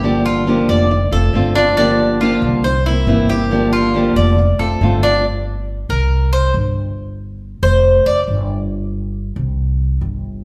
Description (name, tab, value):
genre	latin, Cuban son and guajira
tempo	138 BPM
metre	4/4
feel	straight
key	unclear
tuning	A4 = 440 Hz
part	nylon-string guitar	accompaniment	0.0-5.2 s	C3 to G4	-19 LUFS	equal	none
part	Cuban tres	arpeggios	0.0-8.2 s	D4 to D5	-20 LUFS	equal	none
part	upright bass	bass	0.0-10.4 s	F1 to C2	-20 LUFS	equal	none
room	wet large studio reverb, RT60 1.4 s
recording	heard from further back in the room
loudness	-16 LUFS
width	mono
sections	0.0-5.2 A section; 5.2-10.4 B section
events	Cuban tres solo 5.2-10.4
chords	0.0 Gm7; 0.9 F6; 1.8 Gm7; 2.6 C7; 3.5 Gm7; 4.4 F6; 5.2 C5; 7.0 Fsus2; 8.7 C5